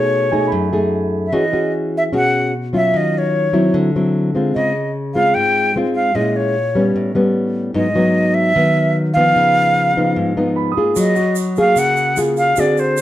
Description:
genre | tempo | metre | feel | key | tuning
bossa nova | 149 BPM | 4/4 | straight | unclear | A4 = 440 Hz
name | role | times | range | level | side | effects
silver concert flute | melody | 0.0-13.0 s | C5 to G5 | -17 LUFS | equal | plate reverb
nylon-string guitar | accompaniment | 0.0-13.0 s | F#2 to G#4 | -16 LUFS | left 1 dB | none
warm concert grand piano | accompaniment | 0.3-1.6, 10.6-12.6 s | F#4 to D#6 | -26 LUFS | right 4 dB | none
tube shaker | percussion | 11.0-13.0 s | none | -30 LUFS | right 9 dB | none
room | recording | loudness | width
moderate studio reverb, RT60 0.6 s | none | -14 LUFS | side -13 dB against mid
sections
0.0-13.0 A section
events
none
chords
0.0 B13; 1.3 E69; 2.9 D#m9; 3.7 D9; 4.5 C#maj7; 6.1 A#m7b5; 6.9 A9; 7.8 G#m7; 9.4 C#9; 11.0 F#maj9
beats
0.12 0.52 0.92 | 1.32 1.72 2.13 2.53 | 2.93 3.33 3.73 4.13 | 4.54 4.94 5.34 5.74 | 6.14 6.55 6.95 7.35 | 7.75 8.15 8.55 8.96 | 9.36 9.76 10.16 10.56 | 10.96 11.37 11.77 12.17 | 12.57 12.97

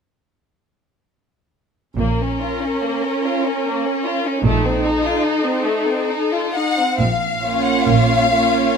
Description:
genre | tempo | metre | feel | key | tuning
classical, slow romantic movement for string orchestra | 62-78 BPM | 3/4 | rubato | Bb minor | A4 = 435 Hz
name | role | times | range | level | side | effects
rich studio violin section | melody | 2.0-8.8 s | A4 to Gb5 | -21 LUFS | left 4 dB | none
rich studio violin section | second line | 2.0-8.8 s | A3 to Db5 | -22 LUFS | left 2 dB | none
warm studio viola section | accompaniment | 2.0-8.8 s | Bb3 to Eb4 | -22 LUFS | right 5 dB | none
rich studio cello section | bass | 2.0-8.7 s | Bb2 | -24 LUFS | right 4 dB | none
rich studio double bass section | bass | 2.0-8.7 s | Bb1 | -22 LUFS | right 2 dB | none
room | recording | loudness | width
light reverb | close, detailed microphones | -16 LUFS | side -6 dB against mid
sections
2.0-7.0 A section; 7.0-8.8 B section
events
none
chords
2.0 Bbm; 4.4 F7/Bb (rootless); 7.0 Bbm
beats
| 1.98 2.82 3.65 | 4.44 5.22 6.08 | 7.00 7.88

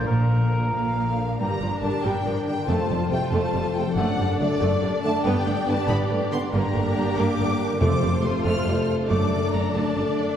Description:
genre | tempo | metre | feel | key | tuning
cinematic, heroic adventure film score | 93 BPM (dotted quarters) | 6/8 | straight | unclear | A4 = 441 Hz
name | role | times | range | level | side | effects
rich chamber violin section | melody | 0.0-10.4 s | Bb4 to F6 | -30 LUFS | left 3 dB | none
clear oboe | second line | 0.0-1.1 s | Bb4 | -28 LUFS | equal | none
warm symphonic violin section | second line | 0.0-10.4 s | Bb3 to D5 | -30 LUFS | left 2 dB | none
warm symphonic viola section | accompaniment | 0.0-10.4 s | D3 to F4 | -28 LUFS | right 1 dB | none
concert harp | arpeggios | 0.0-10.4 s | F2 to D6 | -31 LUFS | left 4 dB | none
dark symphonic double bass section | bass | 0.1-10.0 s | F1 to Bb1 | -28 LUFS | right 1 dB | none
rich symphonic cello section | bass | 0.1-10.0 s | F2 to Bb2 | -28 LUFS | right 1 dB | none
mellow trombone section | sustained chords | 1.8-10.4 s | C3 to B3 | -29 LUFS | right 1 dB | none
timpani | percussion | 2.7-3.3, 7.8-8.4 s | F2 | -30 LUFS | left 1 dB | none
room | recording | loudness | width
wet scoring stage reverb, RT60 1.5 s | heard from further back in the room | -21 LUFS | side -9 dB against mid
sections
0.0-1.4 A section; 1.4-10.4 B section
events
none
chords
0.0 Bb; 1.4 Gm; 2.7 F; 4.0 D/F#; 5.2 G; 6.5 Gm; 7.8 F; 9.1 D/F#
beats
| 0.08 0.74 | 1.39 2.04 | 2.68 3.33 | 3.97 4.61 | 5.25 5.89 | 6.53 7.17 | 7.81 8.45 | 9.10 9.74

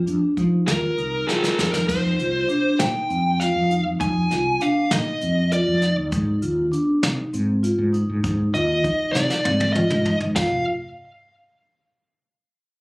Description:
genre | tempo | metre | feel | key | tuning
progressive instrumental, band music in an uneven meter | 198 BPM (eighths) | 7/8 | straight | F dorian | A4 = 441 Hz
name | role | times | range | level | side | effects
vibraphone with soft mallets | arpeggios | 0.1-10.6 s | C4 to F4 | -24 LUFS | equal | none
mellow fretless electric bass | bass | 0.1-10.6 s | F1 to F3 | -23 LUFS | equal | none
jazz brush drum kit | drums | 0.1-10.5 s | crash cymbal, hi-hat, kick drum, snare drum, toms | -26 LUFS | equal | none
fuzz lead guitar | melody | 0.7-10.6 s | Ab4 to Ab5 | -23 LUFS | equal | distortion, ping-pong delay
room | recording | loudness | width
light reverb | recorded on a phone in the room, club reverb | -19 LUFS | side -29 dB against mid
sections
0.0-1.9 A section; 1.9-10.4 B section; 10.4-12.5 C section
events
drum fill 1.3-1.9, 9.1-10.4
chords
0.0 F5; 1.9 F7(no3); 6.1 Ab6; 10.4 N.C.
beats
0.06 0.37 0.67 0.97 1.28 1.58 | 1.88 2.19 2.49 2.79 3.09 3.40 3.70 | 4.00 4.30 4.61 4.91 5.21 5.52 5.82 | 6.12 6.42 6.73 7.03 7.33 7.63 7.94 | 8.24 8.54 8.84 9.15 9.45 9.75 10.05 | 10.36

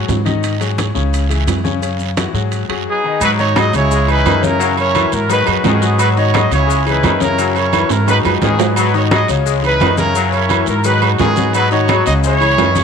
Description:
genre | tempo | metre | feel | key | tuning
latin, salsa | 173 BPM | 4/4 | straight | G# minor | A4 = 439 Hz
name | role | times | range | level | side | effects
bright grand piano | accompaniment | 0.0-12.8 s | C#3 to D#5 | -21 LUFS | left 12 dB | none
upright bass | bass | 0.0-12.8 s | C#2 to G#2 | -17 LUFS | right 1 dB | none
congas | percussion | 0.1-12.8 s | none | -22 LUFS | left 2 dB | none
guiro | percussion | 0.1-12.8 s | none | -28 LUFS | right 16 dB | none
maracas | percussion | 0.1-12.8 s | none | -31 LUFS | left 14 dB | none
timbales and agogo bells | percussion | 0.1-12.8 s | none | -20 LUFS | right 14 dB | none
clear trumpet section | melody | 2.9-12.8 s | B3 to D#5 | -16 LUFS | right 2 dB | none
brilliant trombone section | second line | 3.2-12.8 s | D#3 to G#3 | -21 LUFS | left 11 dB | none
room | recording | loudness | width
light reverb, studio ambience | 1960s-style stereo with parts hard left and right | -12 LUFS | side -6 dB against mid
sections
0.0-3.2 A section; 3.2-12.8 B section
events
drum fill 7.9-8.8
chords
0.0 G#5; 1.1 C#m; 1.8 F#5; 2.5 G#m7; 3.2 C#m9; 4.6 F#7; 5.3 G#m7; 6.7 C#m9; 7.4 F#7; 8.1 G#m7; 9.5 C#m9; 10.2 F#7; 10.8 G#m7; 12.2 C#madd9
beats
0.09 | 0.43 0.78 1.13 1.48 | 1.82 2.17 2.52 2.87 | 3.21 3.56 3.91 4.25 | 4.60 4.95 5.29 5.64 | 5.99 6.33 6.68 7.03 | 7.38 7.72 8.07 8.42 | 8.76 9.11 9.46 9.80 | 10.15 10.50 10.85 11.19 | 11.54 11.88 12.23 12.58

